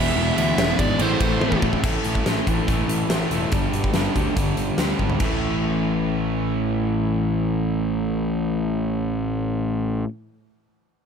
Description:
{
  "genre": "hard rock",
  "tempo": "143 BPM",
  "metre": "4/4",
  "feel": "straight",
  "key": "unclear",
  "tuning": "A4 = 440 Hz",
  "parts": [
    { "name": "dark smooth lead guitar", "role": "melody", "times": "0.0-1.6 s", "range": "C5 to E5", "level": "-26 LUFS", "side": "right 2 dB", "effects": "overdrive, slapback echo" },
    { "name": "dark analog pad", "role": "sustained chords", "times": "0.0-1.8 s", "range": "A3 to E5", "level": "-35 LUFS", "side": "right 3 dB", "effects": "none" },
    { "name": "crunchy overdriven guitar", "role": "riff", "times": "0.0-10.1 s", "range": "E2 to A3", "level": "-27 LUFS", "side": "right 10 dB", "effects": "none" },
    { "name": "overdriven semi-hollow guitar", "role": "riff", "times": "0.0-10.1 s", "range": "E2 to A3", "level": "-26 LUFS", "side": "left 10 dB", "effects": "none" },
    { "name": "sludgy distorted guitar", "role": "riff", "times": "0.0-1.8 s", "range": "A2 to E4", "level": "-28 LUFS", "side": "equal", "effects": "overdrive" },
    { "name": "fuzz picked electric bass", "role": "bass", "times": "0.0-10.0 s", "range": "E1 to D2", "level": "-26 LUFS", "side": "equal", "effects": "overdrive" },
    { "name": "big rock drum kit", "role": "drums", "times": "0.4-5.3 s", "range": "crash cymbal, hi-hat, kick drum, ride cymbal, snare drum, toms", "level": "-24 LUFS", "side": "equal", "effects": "none" }
  ],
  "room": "light reverb, small room ambience",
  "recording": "none",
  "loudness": "-20 LUFS",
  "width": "side -6 dB against mid",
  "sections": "0.0-1.8 A section; 1.8-5.2 B section; 5.2-8.6 C section",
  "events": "drum fill 1.4-1.8, 5.0",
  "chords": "0.0 E; 1.0 Am; 1.8 A5; 3.5 G5; 5.2 A5",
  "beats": "| 0.17 0.58 1.00 1.42 | 1.84 2.26 2.67 3.10 | 3.52 3.94 4.36 4.78 | 5.20 5.62 6.04 6.46 | 6.88 7.30 7.73 8.15"
}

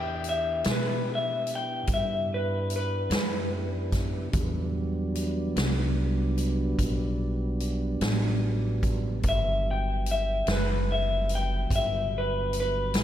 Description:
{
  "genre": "slow blues",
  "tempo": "49 BPM (dotted quarters)",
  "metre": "12/8",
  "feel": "straight",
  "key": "E minor",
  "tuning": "A4 = 439 Hz",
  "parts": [
    { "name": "electric guitar through a small old amp", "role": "melody", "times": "0.0-13.0 s", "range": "B4 to G5", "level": "-29 LUFS", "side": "left 2 dB", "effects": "spring reverb, slapback echo" },
    { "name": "mellow tonewheel organ", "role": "sustained chords", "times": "0.0-13.0 s", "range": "D3 to G4", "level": "-33 LUFS", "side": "right 2 dB", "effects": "slow rotary speaker" },
    { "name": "upright bass", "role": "bass", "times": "0.0-13.0 s", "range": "F#1 to B2", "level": "-29 LUFS", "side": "equal", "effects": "none" },
    { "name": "swinging big-band drum kit", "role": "drums", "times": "0.2-13.0 s", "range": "hi-hat, kick drum, snare drum", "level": "-31 LUFS", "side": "equal", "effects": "none" }
  ],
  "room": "moderate lush hall reverb, RT60 2.8 s",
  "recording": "big arena sound",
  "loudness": "-25 LUFS",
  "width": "side -11 dB against mid",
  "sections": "0.0-13.0 A section",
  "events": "none",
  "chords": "0.0 Em7",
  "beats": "0.65 1.87 3.10 | 4.33 5.55 6.78 8.01 | 9.24 10.47 11.70 12.94"
}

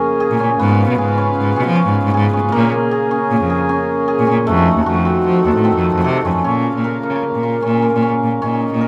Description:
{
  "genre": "contemporary instrumental, chamber music in an uneven meter",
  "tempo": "154 BPM",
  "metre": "5/4",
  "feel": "straight",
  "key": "Bb minor",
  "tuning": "A4 = 440 Hz",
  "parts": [
    { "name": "hand-pumped harmonium", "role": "sustained chords", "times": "0.0-8.9 s", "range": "Db3 to Ab4", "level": "-24 LUFS", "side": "equal", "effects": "none" },
    { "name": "cimbalom", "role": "arpeggios", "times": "0.0-8.9 s", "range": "A3 to Bb4", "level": "-20 LUFS", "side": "equal", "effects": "none" },
    { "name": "rich cello", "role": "bass", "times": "0.3-8.9 s", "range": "Eb2 to F3", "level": "-19 LUFS", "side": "equal", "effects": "none" }
  ],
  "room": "moderate studio ambience, RT60 0.5 s",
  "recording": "none",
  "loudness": "-16 LUFS",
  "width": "mono",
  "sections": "0.0-6.5 A section; 6.5-8.9 B section",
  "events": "none",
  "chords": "0.0 Bbm7; 0.6 Db7/Ab; 2.5 Bbm7; 4.5 F7b9; 6.5 Bbm",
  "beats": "0.20 | 0.59 0.98 1.37 1.76 2.15 | 2.53 2.92 3.31 3.70 4.09 | 4.47 4.86 5.25 5.65 6.05 | 6.45 6.85 7.24 7.63 8.03 | 8.42 8.81"
}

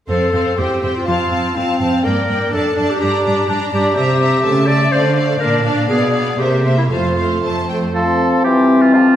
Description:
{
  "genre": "quick classical-period movement for symphony orchestra",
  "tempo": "123 BPM",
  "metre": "2/4",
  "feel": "rubato",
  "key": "F major",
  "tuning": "A4 = 440 Hz",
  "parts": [
    { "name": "rich studio violin section", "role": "melody", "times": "0.1-7.8 s", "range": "E5 to Bb5", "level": "-26 LUFS", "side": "left 3 dB", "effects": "none" },
    { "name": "bright clarinet", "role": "second line", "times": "0.1-9.2 s", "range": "C4 to D5", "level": "-18 LUFS", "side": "left 1 dB", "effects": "none" },
    { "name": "rich studio violin section", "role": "second line", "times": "0.1-7.9 s", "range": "C5 to F5", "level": "-23 LUFS", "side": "left 2 dB", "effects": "none" },
    { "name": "rich studio viola section", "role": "accompaniment", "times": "0.1-8.0 s", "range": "A3 to D4", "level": "-22 LUFS", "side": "right 2 dB", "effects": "none" },
    { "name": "rich studio cello section", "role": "bass", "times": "0.1-7.9 s", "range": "E2 to D3", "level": "-20 LUFS", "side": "right 1 dB", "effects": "none" },
    { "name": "warm oboe", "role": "second line", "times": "7.9-9.2 s", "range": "F4 to A4", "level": "-17 LUFS", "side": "right 2 dB", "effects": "none" },
    { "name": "clear bassoon", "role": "accompaniment", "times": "7.9-9.2 s", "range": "E3 to F3", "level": "-18 LUFS", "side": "right 1 dB", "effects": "none" },
    { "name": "bright silver concert flute", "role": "second line", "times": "8.0-9.2 s", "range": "A5 to C6", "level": "-25 LUFS", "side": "left 2 dB", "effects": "none" },
    { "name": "dark French horn section", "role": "sustained chords", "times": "8.0-9.2 s", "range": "F3 to C4", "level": "-14 LUFS", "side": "left 2 dB", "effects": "none" }
  ],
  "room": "wet recital hall reverb, RT60 1.5 s",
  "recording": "recorded in a church or concert hall",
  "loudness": "-13 LUFS",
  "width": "side -11 dB against mid",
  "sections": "0.1-8.0 A section; 8.0-9.2 A section",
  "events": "none",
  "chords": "0.1 F; 0.6 C/E; 1.1 F; 2.0 Gm; 2.5 D/F#; 3.0 Gm; 4.0 C7; 4.4 A7/C#; 4.9 Dm; 5.4 Bb; 5.9 Bdim7; 6.4 C7; 6.9 F; 8.5 C/E",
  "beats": "| 0.08 0.58 | 1.07 1.56 | 2.05 2.53 | 3.01 3.49 | 3.96 4.44 | 4.92 5.41 | 5.89 6.39 | 6.91 7.44 | 7.95 8.45 | 8.94"
}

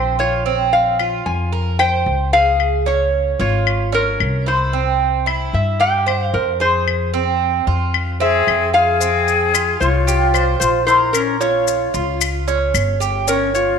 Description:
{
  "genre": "latin, Cuban son and guajira",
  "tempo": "112 BPM",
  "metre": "4/4",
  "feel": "straight",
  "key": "F harmonic minor",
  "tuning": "A4 = 440 Hz",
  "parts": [
    { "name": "metal-body resonator slide guitar", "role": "melody", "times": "0.0-13.8 s", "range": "Bb4 to Ab5", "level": "-18 LUFS", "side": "left 2 dB", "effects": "none" },
    { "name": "Cuban tres", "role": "arpeggios", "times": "0.0-13.8 s", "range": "C4 to C5", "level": "-20 LUFS", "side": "right 9 dB", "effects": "slapback echo" },
    { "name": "upright bass", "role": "bass", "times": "0.0-13.8 s", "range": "G1 to G2", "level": "-21 LUFS", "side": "left 1 dB", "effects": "none" },
    { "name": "claves", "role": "percussion", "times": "1.0-13.0 s", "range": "none", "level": "-24 LUFS", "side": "left 12 dB", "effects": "none" },
    { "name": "breathy silver concert flute", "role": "second line", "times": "8.2-13.8 s", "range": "Db4 to Ab4", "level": "-20 LUFS", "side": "left 8 dB", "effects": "none" },
    { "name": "maracas", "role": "percussion", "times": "9.0-13.8 s", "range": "none", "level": "-26 LUFS", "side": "left 13 dB", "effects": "none" }
  ],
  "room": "moderate echo chamber reverb, RT60 1.9 s, small room ambience",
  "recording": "1960s-style stereo with parts hard left and right",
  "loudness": "-14 LUFS",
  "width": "side -6 dB against mid",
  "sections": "0.0-9.0 A section; 9.0-13.8 A section",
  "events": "none",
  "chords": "0.5 Bbmadd9; 2.6 Db; 4.7 C; 6.9 Fm; 9.0 Fmadd9; 11.1 Bbm; 13.3 Gdim",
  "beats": "| 0.46 0.99 1.52 2.06 | 2.59 3.13 3.66 4.20 | 4.73 5.26 5.80 6.33 | 6.87 7.40 7.94 8.47 | 9.01 9.54 10.07 10.61 | 11.14 11.68 12.21 12.74 | 13.28"
}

